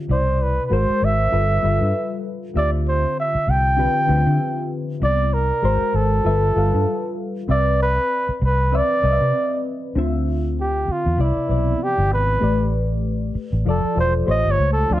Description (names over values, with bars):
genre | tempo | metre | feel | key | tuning
lush 1970s-style soul | 97 BPM | 4/4 | swing 58% on 16ths | D dorian | A4 = 440 Hz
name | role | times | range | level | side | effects
reed electric piano | accompaniment | 0.0-15.0 s | B2 to F5 | -24 LUFS | left 3 dB | phaser
breathy flugelhorn | melody | 0.1-15.0 s | E4 to G5 | -21 LUFS | right 2 dB | none
vintage muted fingered electric bass | bass | 0.1-15.0 s | E1 to D3 | -20 LUFS | equal | none
room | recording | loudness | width
light reverb | nothing above 11.0 kHz | -17 LUFS | side -14 dB against mid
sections
0.0-10.0 A section; 10.0-15.0 B section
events
flugelhorn solo 10.0-15.0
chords
0.1 Cmaj9; 0.7 G#9; 1.3 G13; 2.6 Dm11; 5.0 Cmaj9; 5.6 G#9; 6.3 G13; 7.5 Cmaj9; 10.0 Dm9; 11.2 Cmaj9; 12.4 A9sus4; 13.7 F6; 14.3 A7alt